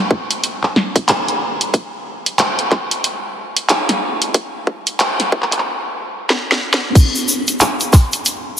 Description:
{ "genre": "glitch hop", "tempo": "92 BPM", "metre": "4/4", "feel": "swing 61% on 16ths", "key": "none", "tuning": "none", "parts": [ { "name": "electronic kick drum", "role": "drums", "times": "0.1-8.1 s", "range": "none", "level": "-10 LUFS", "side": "equal", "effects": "high-pass filter on kick" }, { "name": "drum and bass drum kit", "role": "drums", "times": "0.3-8.4 s", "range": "crash cymbal, handclaps, hi-hat, snare drum", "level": "-16 LUFS", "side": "equal", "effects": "none" }, { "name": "tube shaker", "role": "percussion", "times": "7.0-8.4 s", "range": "none", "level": "-20 LUFS", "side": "left 1 dB", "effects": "none" } ], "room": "wet plate reverb, RT60 3.6 s", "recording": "heavily compressed radio sound, high-pass filter", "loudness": "-14 LUFS", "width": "side -9 dB against mid", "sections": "0.0-7.0 A section; 7.0-8.6 B section", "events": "build-up 0.0-7.0; drum fill 6.3-7.0; drop 7.0-8.6", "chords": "none", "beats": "0.43 1.08 | 1.74 2.39 3.04 3.69 | 4.34 5.00 5.65 6.30 | 6.95 7.61 8.26" }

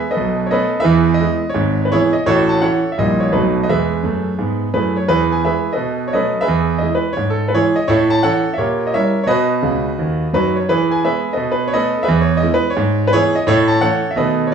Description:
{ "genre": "jazz, stride piano", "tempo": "171 BPM", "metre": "4/4", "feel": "swing 64% on 8ths", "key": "E major", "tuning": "A4 = 442 Hz", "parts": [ { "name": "clear concert grand piano", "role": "solo", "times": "0.0-14.5 s", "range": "G#1 to A5", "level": "-14 LUFS", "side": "right 2 dB", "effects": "none" } ], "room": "moderate studio reverb, RT60 0.9 s", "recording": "studio reverb", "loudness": "-14 LUFS", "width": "side -7 dB against mid", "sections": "0.0-5.1 A section; 5.1-14.5 A section", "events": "grand piano fill 9.6-10.7", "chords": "0.2 Bsus2; 0.9 E; 1.6 E/G#; 2.3 A6; 3.0 A#dim7; 3.3 B7; 3.7 E; 5.8 Bsus2; 6.5 E; 7.2 E/G#; 7.9 A; 8.6 A#dim7; 9.3 B; 10.7 E; 11.4 Bsus2; 12.1 E; 12.8 E/G#; 13.5 A; 14.2 B7", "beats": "0.16 0.51 | 0.86 1.22 1.57 1.92 | 2.27 2.62 2.97 3.32 | 3.67 4.02 4.37 4.72 | 5.07 5.42 5.78 6.13 | 6.48 6.83 7.18 7.53 | 7.88 8.23 8.58 8.93 | 9.28 9.63 9.98 10.33 | 10.68 11.03 11.38 11.73 | 12.08 12.43 12.78 13.13 | 13.48 13.83 14.18 14.52" }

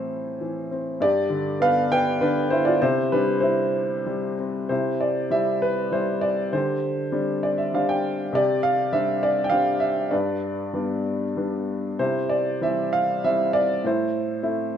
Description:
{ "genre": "classical, lyrical solo piano", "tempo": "99 BPM", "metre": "3/4", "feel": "rubato", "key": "C major", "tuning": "A4 = 443 Hz", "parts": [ { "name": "clear upright piano", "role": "solo", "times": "0.0-14.8 s", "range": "G2 to G5", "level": "-21 LUFS", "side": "equal", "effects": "none" } ], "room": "moderate recital hall reverb, RT60 1.7 s", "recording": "minimal, uncompressed stereo recording", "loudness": "-21 LUFS", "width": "side -9 dB against mid", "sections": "0.0-4.7 A section; 4.7-14.8 B section", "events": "upright piano fill 7.1-8.3", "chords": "0.0 Am; 1.0 G6; 2.8 C; 6.5 Gsus4/D; 8.3 Csus2; 10.1 G; 12.0 C; 13.8 Am", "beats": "0.41 | 1.01 1.61 2.21 | 2.81 3.42 4.06 | 4.70 5.32 5.94 | 6.54 7.14 7.74 | 8.34 8.94 9.53 | 10.13 10.74 11.37 | 11.99 12.62 13.23 | 13.84 14.44" }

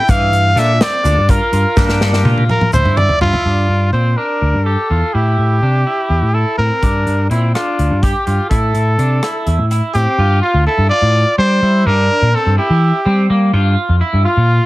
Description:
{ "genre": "progressive instrumental, band music in an uneven meter", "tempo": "250 BPM (eighths)", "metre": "7/8", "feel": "straight", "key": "G dorian", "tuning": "A4 = 440 Hz", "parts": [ { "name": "bright trumpet", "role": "melody", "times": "0.0-14.7 s", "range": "E4 to G5", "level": "-16 LUFS", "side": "equal", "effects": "none" }, { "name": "bright tonewheel organ", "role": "accompaniment", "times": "0.0-2.4 s", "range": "Bb3 to Bb4", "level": "-22 LUFS", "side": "left 1 dB", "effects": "slow rotary speaker" }, { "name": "electric guitar at the edge of break-up", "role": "arpeggios", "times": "0.0-14.7 s", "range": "E3 to G4", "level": "-22 LUFS", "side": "right 1 dB", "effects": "wide subtle chorus" }, { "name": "overdriven picked electric bass", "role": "bass", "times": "0.1-14.6 s", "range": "D2 to G3", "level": "-14 LUFS", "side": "equal", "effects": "none" }, { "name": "natural country drum kit", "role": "drums", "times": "0.1-3.4, 6.8-10.1 s", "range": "hi-hat, kick drum, rim click, snare drum, toms", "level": "-17 LUFS", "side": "equal", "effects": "none" }, { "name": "egg shaker", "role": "percussion", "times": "0.1-3.1 s", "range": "none", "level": "-36 LUFS", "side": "left 5 dB", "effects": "none" } ], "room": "small room ambience", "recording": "heavily compressed radio sound, multiband compression", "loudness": "-11 LUFS", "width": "side -18 dB against mid", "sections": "0.0-3.5 A section; 3.5-10.2 B section; 10.2-14.7 C section", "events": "trumpet solo 0.0-3.5; drum fill 1.8-3.5", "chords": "0.1 Gm7; 1.8 Gm; 3.5 Gm7; 5.1 Am7; 6.8 Gm7; 8.5 Am; 10.2 F6; 11.9 C7/G; 13.5 Gm7", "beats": "| 0.09 0.33 0.57 0.81 1.05 1.29 1.53 | 1.77 2.01 2.25 2.50 2.73 2.98 3.22 | 3.46 3.70 3.94 4.18 4.42 4.66 4.90 | 5.14 5.38 5.62 5.86 6.11 6.34 6.59 | 6.83 7.07 7.31 7.55 7.79 8.03 8.27 | 8.51 8.75 8.99 9.23 9.47 9.71 9.95 | 10.19 10.43 10.67 10.91 11.14 11.38 11.62 | 11.86 12.10 12.34 12.58 12.82 13.06 13.30 | 13.54 13.78 14.02 14.25 14.49" }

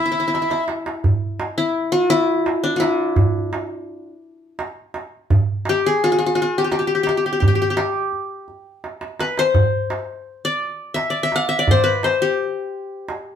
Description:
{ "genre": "Arabic maqam ensemble", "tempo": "85 BPM", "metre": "3/4", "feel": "straight", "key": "E maqam saba", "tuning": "A4 = 440 Hz", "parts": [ { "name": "qanun", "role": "melody", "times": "0.0-13.4 s", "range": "D4 to F#5-50c", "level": "-19 LUFS", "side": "left 2 dB", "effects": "none" }, { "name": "accordion", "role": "second line", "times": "0.0-0.6 s", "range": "E4", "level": "-21 LUFS", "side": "left 1 dB", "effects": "none" }, { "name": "clear fiddle", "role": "second line", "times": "0.0-0.7 s", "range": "E4", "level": "-30 LUFS", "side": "right 5 dB", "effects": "none" }, { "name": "darbuka", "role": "percussion", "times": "0.3-13.3 s", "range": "none", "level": "-20 LUFS", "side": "right 2 dB", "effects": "none" } ], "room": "wet studio reverb, RT60 0.6 s", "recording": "band playing live in one room", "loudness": "-17 LUFS", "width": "side -8 dB against mid", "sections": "0.0-1.0 A section; 1.0-13.4 B section", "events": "drum fill 0.3-1.0, 8.8-9.6", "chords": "none", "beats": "0.33 | 1.04 1.75 2.46 | 3.17 3.88 4.59 | 5.30 6.01 6.72 | 7.43 8.14 8.85 | 9.55 10.26 10.97 | 11.68 12.38 13.09" }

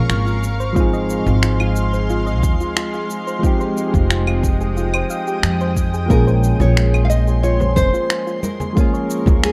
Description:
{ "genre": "sunset chillout", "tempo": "90 BPM", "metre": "4/4", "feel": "straight", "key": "Ab major", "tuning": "A4 = 440 Hz", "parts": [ { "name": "soft electric-piano-like synth keys", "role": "accompaniment", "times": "0.0-9.5 s", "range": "F3 to Ab4", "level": "-25 LUFS", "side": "equal", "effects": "chorus, vintage 12-bit sampler grit, digital delay" }, { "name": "shimmering ambient pad", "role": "sustained chords", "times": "0.0-9.5 s", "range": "Ab3 to Eb6", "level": "-30 LUFS", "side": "equal", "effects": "chorus, built-in reverb" }, { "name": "soft round pluck", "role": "arpeggios", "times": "0.0-9.5 s", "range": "F4 to G5", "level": "-30 LUFS", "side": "equal", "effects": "chorus, digital delay" }, { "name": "upright bass", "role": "bass", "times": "0.1-9.5 s", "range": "F1 to F2", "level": "-20 LUFS", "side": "equal", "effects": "tube saturation" }, { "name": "electronic finger snaps, shaker and claves", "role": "drums", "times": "0.1-9.5 s", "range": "none", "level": "-26 LUFS", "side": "equal", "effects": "studio reverb" }, { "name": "electronic kick drum", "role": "drums", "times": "0.8-9.4 s", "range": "none", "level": "-19 LUFS", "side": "equal", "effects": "studio reverb" }, { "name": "nylon-string guitar", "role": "melody", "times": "6.1-9.5 s", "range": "F4 to F5", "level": "-25 LUFS", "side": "equal", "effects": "delay" }, { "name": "congas", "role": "percussion", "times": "6.6-9.4 s", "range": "none", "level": "-27 LUFS", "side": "equal", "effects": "none" } ], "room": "light reverb, small room ambience", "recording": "dark, warm production", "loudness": "-18 LUFS", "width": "mono", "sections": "0.0-9.5 A section", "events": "none", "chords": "0.4 Ab6; 3.4 Fm9; 6.1 Bbm9; 8.4 Db6", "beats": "0.10 | 0.77 1.43 2.10 2.77 | 3.43 4.10 4.77 5.43 | 6.10 6.77 7.43 8.10 | 8.77 9.43" }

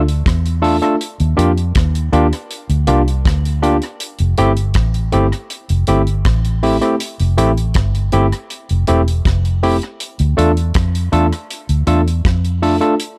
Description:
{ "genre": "lovers rock reggae", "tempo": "80 BPM", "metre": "4/4", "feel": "straight", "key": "F major", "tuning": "A4 = 441 Hz", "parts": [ { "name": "vintage muted fingered electric bass", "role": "bass", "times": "0.0-12.8 s", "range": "E1 to F2", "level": "-18 LUFS", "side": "equal", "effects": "none" }, { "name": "deep reggae drum kit", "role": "drums", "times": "0.1-13.2 s", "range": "hi-hat, kick drum, rim click", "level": "-22 LUFS", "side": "equal", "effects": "tape echo" }, { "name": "barky tine electric piano", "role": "accompaniment", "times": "0.6-12.9 s", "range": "A3 to A4", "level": "-19 LUFS", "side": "equal", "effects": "none" } ], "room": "small room ambience", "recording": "none", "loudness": "-16 LUFS", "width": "mono", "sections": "0.0-13.2 A section", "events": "none", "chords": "0.0 Dm; 1.0 Ebmaj7; 4.0 Fmaj7; 10.0 Dm", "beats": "0.26 | 1.01 1.76 2.51 3.25 | 4.00 4.75 5.50 6.25 | 7.00 7.75 8.50 9.25 | 10.00 10.75 11.50 12.25 | 13.00" }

